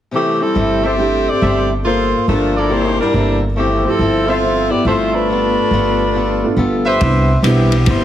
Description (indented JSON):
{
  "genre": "jazz, big band swing",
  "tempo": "139 BPM",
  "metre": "4/4",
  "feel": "swing 66% on 8ths",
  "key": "C major",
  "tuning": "A4 = 440 Hz",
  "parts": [
    { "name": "clear saxophone section", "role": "melody", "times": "0.1-8.0 s", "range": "E3 to E5", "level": "-16 LUFS", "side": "left 1 dB", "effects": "none" },
    { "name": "picked swing-style acoustic guitar", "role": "accompaniment", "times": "0.1-8.0 s", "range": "C3 to A4", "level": "-22 LUFS", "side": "left 2 dB", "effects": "none" },
    { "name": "upright bass", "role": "bass", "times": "0.6-8.0 s", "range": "G1 to C2", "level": "-18 LUFS", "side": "equal", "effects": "none" },
    { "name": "clear trumpet section", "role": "stabs", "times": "0.8-7.4 s", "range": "E4 to E5", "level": "-20 LUFS", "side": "equal", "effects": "none" },
    { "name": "warm grand piano", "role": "accompaniment", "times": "1.0-7.7 s", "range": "G3 to A4", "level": "-21 LUFS", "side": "right 4 dB", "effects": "none" },
    { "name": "swinging big-band drum kit", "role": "drums", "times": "7.0-8.0 s", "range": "hi-hat, kick drum, ride cymbal", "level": "-21 LUFS", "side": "equal", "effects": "none" }
  ],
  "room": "moderate large studio reverb, RT60 1.3 s",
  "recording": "heavily compressed radio sound",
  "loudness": "-13 LUFS",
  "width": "side -11 dB against mid",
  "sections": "0.1-7.0 A section; 7.0-8.0 B section",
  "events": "none",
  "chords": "0.1 C6; 1.8 Gm9; 2.7 C13; 3.6 G9; 7.0 Cmaj7"
}